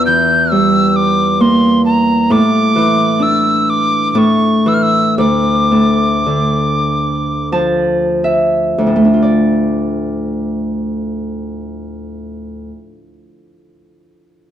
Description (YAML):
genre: celtic folk, Celtic slow air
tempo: 39-67 BPM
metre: 3/4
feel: rubato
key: D minor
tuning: A4 = 440 Hz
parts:
  - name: wooden whistle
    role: melody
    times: 0.0-7.5 s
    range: Bb5 to G6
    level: -15 LUFS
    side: equal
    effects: none
  - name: Celtic harp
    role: accompaniment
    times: 0.0-12.8 s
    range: D2 to A5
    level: -13 LUFS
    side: equal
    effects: none
room: wet recital hall reverb, RT60 1.8 s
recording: dark, warm production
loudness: -11 LUFS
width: side -10 dB against mid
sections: 0.0-9.0 A section; 9.0-13.3 B section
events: slowing down 2.3-9.0; harp fill 6.9-9.0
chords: 0.0 Edim; 2.3 Asus4; 5.2 Dm